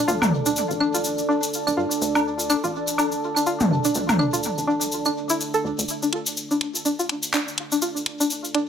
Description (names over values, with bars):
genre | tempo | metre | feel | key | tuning
minimal techno | 124 BPM | 4/4 | swing 58% on 16ths | unclear | A4 = 440 Hz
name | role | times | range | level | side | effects
string-like resonator pluck | riff | 0.0-8.6 s | D4 to A4 | -24 LUFS | equal | chorus, analog delay
deep dark ambient pad | texture | 0.0-8.7 s | D4 to A5 | -28 LUFS | right 1 dB | chorus, built-in reverb
rubbery square bass | bass | 0.1-5.8 s | D1 to G2 | -34 LUFS | equal | high-pass filter
cabasa | percussion | 0.1-8.5 s | none | -28 LUFS | left 2 dB | analog delay
electronic toms, woodblock and claves | percussion | 0.2-5.1 s | none | -24 LUFS | equal | analog delay
garage drum kit | drums | 6.1-8.7 s | handclaps, hi-hat | -25 LUFS | equal | high-pass filter on hats, high-pass filter on snare
room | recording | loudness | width
moderate plate reverb, RT60 1.4 s | echo-heavy mix | -20 LUFS | side -8 dB against mid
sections
0.0-5.9 A section; 5.9-8.7 B section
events
build-up 5.9-8.7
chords
0.0 D5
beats
| 0.08 0.56 1.05 1.53 | 2.01 2.50 2.98 3.46 | 3.95 4.43 4.92 5.40 | 5.88 6.37 6.85 7.34 | 7.82 8.30